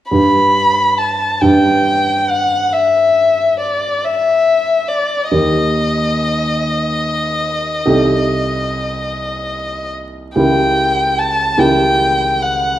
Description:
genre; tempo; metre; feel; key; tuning
classical, romantic duo for violin and grand piano; 47 BPM (dotted quarters); 12/8; rubato; unclear; A4 = 439 Hz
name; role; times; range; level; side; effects
dark violin; melody; 0.1-12.8 s; D5 to B5; -14 LUFS; left 2 dB; none
warm grand piano; accompaniment; 0.1-12.8 s; C2 to B4; -16 LUFS; right 1 dB; none
room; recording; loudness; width
wet recital hall reverb, RT60 1.2 s; vinyl crackle; -12 LUFS; side -12 dB against mid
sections
0.1-12.8 A section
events
none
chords
0.1 G; 5.3 Eb; 7.9 Am7b5/C; 10.4 C#dim7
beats
| 0.12 1.43 2.73 4.03 | 5.31 6.59 7.86 9.10 | 10.37 11.59

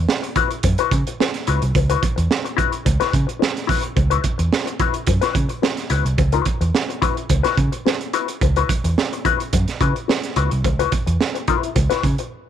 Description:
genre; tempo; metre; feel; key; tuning
funk; 108 BPM; 4/4; straight; C# minor; A4 = 440 Hz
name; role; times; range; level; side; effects
vintage muted picked electric bass; bass; 0.0-12.2 s; B#1 to C#3; -19 LUFS; equal; none
crunchy breakbeat drum kit; drums; 0.1-12.3 s; hi-hat, kick drum, snare drum; -21 LUFS; right 3 dB; none
mellow electric guitar; accompaniment; 0.2-12.2 s; E4 to B4; -22 LUFS; left 14 dB; wah
room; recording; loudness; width
small room ambience; 1960s-style stereo; -17 LUFS; side -9 dB against mid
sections
0.0-12.5 A section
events
break 12.3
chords
0.0 C#m7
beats
0.08 0.63 1.19 | 1.74 2.30 2.85 3.41 | 3.96 4.52 5.08 5.63 | 6.19 6.74 7.30 7.86 | 8.41 8.97 9.53 10.09 | 10.64 11.20 11.76

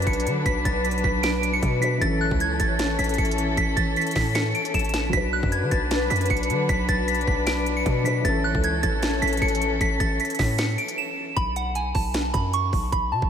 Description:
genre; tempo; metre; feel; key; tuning
hip hop, trap; 154 BPM; 4/4; half-time; B minor; A4 = 440 Hz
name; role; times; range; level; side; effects
soft synth bell; melody; 0.0-13.3 s; F#5 to E7; -26 LUFS; right 2 dB; chorus, phaser, tape echo
dark grand piano; accompaniment; 0.0-11.4 s; E3 to B4; -32 LUFS; equal; none
warm chamber string section; sustained chords; 0.0-11.3 s; E3 to B4; -27 LUFS; left 3 dB; none
hard-hitting 808-style bass; bass; 0.0-13.3 s; A1 to D3; -27 LUFS; equal; none
trap drum kit; drums; 0.0-13.3 s; hi-hat, kick drum, snare drum; -28 LUFS; equal; none
impact; sound effects; 0.0-0.5 s; none; barely audible; none; none
room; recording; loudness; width
moderate huge ambient reverb, RT60 4.3 s; dreamy mix soaked in reverb; -21 LUFS; side -8 dB against mid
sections
0.0-11.4 A section; 11.4-13.3 B section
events
impact 0.0-0.5; break 11.0-11.4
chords
0.0 Bm; 2.0 A; 5.1 Bm; 8.2 A; 11.4 B5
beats
0.07 | 0.46 0.85 1.24 1.63 | 2.02 2.40 2.79 3.18 | 3.57 3.96 4.35 4.74 | 5.13 5.52 5.91 6.30 | 6.69 7.08 7.47 7.86 | 8.25 8.64 9.03 9.42 | 9.81 10.20 10.59 10.98 | 11.37 11.76 12.14 12.54 | 12.92

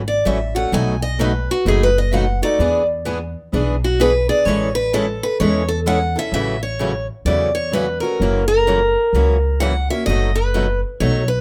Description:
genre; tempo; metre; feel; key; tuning
acoustic string swing (jazz manouche); 128 BPM; 4/4; swing 63% on 8ths; A major; A4 = 440 Hz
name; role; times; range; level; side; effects
upright bass; bass; 0.0-11.4 s; F#1 to E2; -23 LUFS; equal; none
picked steel-string acoustic guitar; melody; 0.1-11.4 s; F#4 to G#5; -21 LUFS; equal; none
picked steel-string acoustic guitar; accompaniment; 0.3-11.2 s; B2 to A4; -26 LUFS; equal; none
picked steel-string acoustic guitar; accompaniment; 0.3-11.2 s; B2 to B4; -27 LUFS; equal; none
room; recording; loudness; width
moderate club reverb, RT60 0.8 s; none; -18 LUFS; mono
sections
0.0-6.3 A section; 6.3-11.4 B section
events
steel-string acoustic guitar solo 0.0-6.3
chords
0.0 F#m7; 0.7 B7; 2.6 E7; 4.5 Amaj7; 6.3 A6; 8.2 F#7; 10.1 B7/F#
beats
0.26 | 0.73 1.19 1.66 2.13 | 2.59 3.06 3.53 3.99 | 4.46 4.93 5.39 5.86 | 6.33 6.80 7.26 7.73 | 8.20 8.66 9.13 9.60 | 10.07 10.54 11.00

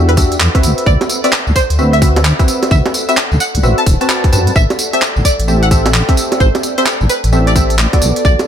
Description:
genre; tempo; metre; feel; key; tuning
UK garage, two-step garage; 130 BPM; 4/4; swing 63% on 16ths; A dorian; A4 = 439 Hz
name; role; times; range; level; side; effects
percussive organ stab; stabs; 0.0-8.5 s; B3 to A5; -18 LUFS; equal; analog chorus, ping-pong delay
deep soft wobble bass; bass; 0.0-8.4 s; D1 to F#2; -12 LUFS; equal; chorus
deep dark ambient pad; texture; 0.0-8.5 s; A4 to G5; -26 LUFS; equal; chorus, built-in reverb, sidechain pumping
string-like resonator pluck; melody; 0.1-8.4 s; B4 to A5; -19 LUFS; equal; wide subtle chorus, dub echo
garage drum kit; drums; 0.1-8.5 s; bongos, handclaps, hi-hat, tambourine; -17 LUFS; right 1 dB; none
electronic kick drum; drums; 0.2-8.4 s; none; -13 LUFS; equal; none
room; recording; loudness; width
light reverb, digital ambience; none; -10 LUFS; side -9 dB against mid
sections
0.0-8.5 A section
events
none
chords
0.0 Em9; 0.6 D13; 4.6 Am7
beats
0.40 | 0.86 1.33 1.79 2.25 | 2.71 3.17 3.63 4.09 | 4.56 5.02 5.48 5.94 | 6.40 6.86 7.33 7.79 | 8.25

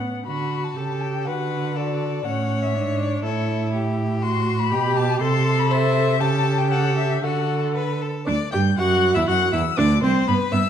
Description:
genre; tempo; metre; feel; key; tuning
quick classical-period movement for string quartet; 120 BPM; 2/4; straight; D major, G major from 4.2 s; A4 = 440 Hz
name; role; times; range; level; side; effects
rich violin; melody; 0.0-10.7 s; C#5 to G6; -26 LUFS; left 10 dB; none
rich viola; accompaniment; 0.0-10.6 s; B3 to A4; -25 LUFS; right 2 dB; none
rich cello; bass; 0.0-10.6 s; C2 to D3; -23 LUFS; right 3 dB; none
clear violin; second line; 0.3-10.7 s; F#4 to G5; -28 LUFS; left 4 dB; none
room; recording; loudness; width
wet recital hall reverb, RT60 1.7 s; dark, warm production; -19 LUFS; side -9 dB against mid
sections
0.3-8.3 A section; 8.3-10.7 B section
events
none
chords
0.3 D; 0.8 A7/C#; 1.3 D; 2.3 A; 2.7 E7/G#; 3.2 A; 4.2 Am69; 4.7 G/B; 5.2 Am/C; 6.2 A7/C#; 7.2 D; 8.3 G5/D; 9.3 D7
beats
| 0.26 0.76 | 1.26 1.76 | 2.25 2.75 | 3.24 3.73 | 4.22 4.72 | 5.21 5.71 | 6.20 6.71 | 7.24 7.76 | 8.28 8.78 | 9.28 9.78 | 10.28

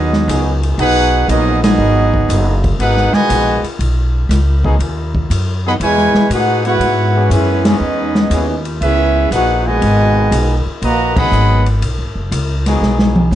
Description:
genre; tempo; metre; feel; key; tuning
jazz, big band swing; 120 BPM; 4/4; swing 68% on 8ths; G# minor; A4 = 440 Hz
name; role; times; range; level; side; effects
clear trumpet section; melody; 0.0-11.7 s; B3 to B5; -16 LUFS; right 1 dB; none
dark trombone section; second line; 0.0-11.7 s; B2 to F#4; -18 LUFS; right 2 dB; none
upright bass; bass; 0.0-13.3 s; F#1 to A2; -15 LUFS; equal; none
open jazz drum kit; drums; 0.1-13.3 s; crash cymbal, hi-hat, kick drum, ride cymbal, snare drum, toms; -19 LUFS; left 1 dB; none
warm trombone section; sustained chords; 0.3-13.3 s; E3 to A#4; -22 LUFS; left 2 dB; none
room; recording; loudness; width
light reverb; dark, warm production, nothing above 10.4 kHz; -12 LUFS; side -12 dB against mid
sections
0.0-13.3 A section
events
band accent 1.5, 7.6, 11.1; drum fill 12.8-13.3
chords
0.0 G#m7; 5.8 C#m7; 9.8 G#m7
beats
0.28 0.78 1.29 | 1.79 2.29 2.79 3.30 | 3.80 4.30 4.80 5.30 | 5.80 6.31 6.81 7.31 | 7.81 8.31 8.81 9.31 | 9.82 10.32 10.82 11.32 | 11.82 12.32 12.82 13.32

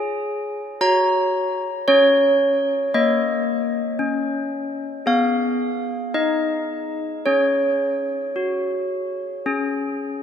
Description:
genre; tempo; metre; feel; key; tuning
classical, tune for handbells; 54-57 BPM; 4/4; straight; unclear; A4 = 440 Hz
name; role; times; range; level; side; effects
handbells; solo; 0.0-10.2 s; A#3 to A#5; -19 LUFS; equal; none
room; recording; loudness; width
wet cathedral reverb, RT60 4.0 s; minimal, uncompressed stereo recording; -19 LUFS; side -8 dB against mid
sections
0.0-10.2 A section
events
none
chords
0.0 C#5; 0.8 F#; 2.9 A#madd11; 5.1 G#m/B; 7.2 C#sus4; 9.5 C#5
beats
0.81 1.87 | 2.94 4.00 5.07 6.14 | 7.25 8.36 9.46

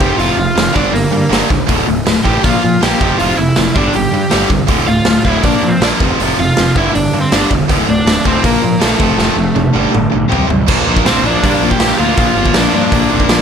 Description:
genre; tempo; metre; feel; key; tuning
punk rock; 160 BPM; 4/4; straight; unclear; A4 = 440 Hz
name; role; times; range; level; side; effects
crunchy overdriven guitar; melody; 0.0-13.4 s; A3 to G5; -17 LUFS; right 1 dB; none
distorted electric guitar; riff; 0.0-13.4 s; D2 to C4; -17 LUFS; left 12 dB; distortion
tight distorted guitar; riff; 0.0-13.4 s; D2 to C4; -17 LUFS; right 15 dB; distortion
fuzz picked electric bass; bass; 0.0-13.4 s; D1 to Bb2; -19 LUFS; equal; overdrive
raw garage drum kit; drums; 0.0-13.4 s; crash cymbal, hi-hat, kick drum, snare drum, toms; -15 LUFS; equal; none
room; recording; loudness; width
little or no reverb; none; -10 LUFS; side -7 dB against mid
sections
0.0-10.7 A section; 10.7-13.4 B section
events
drum fill 9.2-10.7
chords
0.0 F5; 0.8 Gm; 1.7 D5; 2.4 Bb5; 3.0 F5; 3.8 G5; 4.7 Dm; 5.4 Bb; 6.0 F5; 6.8 G5; 7.7 D5; 8.4 Bb5; 9.0 F; 9.7 G5; 10.3 C5; 10.7 Bb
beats
| 0.19 0.56 0.94 1.31 | 1.69 2.06 2.44 2.81 | 3.19 3.56 3.94 4.31 | 4.69 5.06 5.44 5.81 | 6.19 6.56 6.94 7.31 | 7.69 8.06 8.44 8.81 | 9.18 9.56 9.93 10.30 | 10.68 11.05 11.42 11.79 | 12.17 12.54 12.91 13.29

